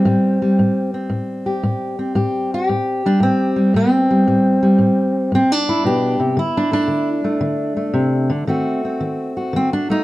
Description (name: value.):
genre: acoustic country blues, solo or duo.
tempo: 114 BPM.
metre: 4/4.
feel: swing 67% on 8ths.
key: A minor.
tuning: A4 = 440 Hz.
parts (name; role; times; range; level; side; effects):
fingerpicked steel-string acoustic guitar; solo; 0.0-10.0 s; A2 to G4; -15 LUFS; equal; none.
room: moderate studio reverb, RT60 0.8 s.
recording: dark, warm production.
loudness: -15 LUFS.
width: side -17 dB against mid.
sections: 0.0-10.0 A section.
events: none.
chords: 0.0 Am7; 6.4 Dsus2; 8.5 D#dim7.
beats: | 0.06 0.59 1.11 1.64 | 2.16 2.69 3.21 3.74 | 4.26 4.79 5.32 5.84 | 6.37 6.89 7.42 7.95 | 8.48 9.00 9.53.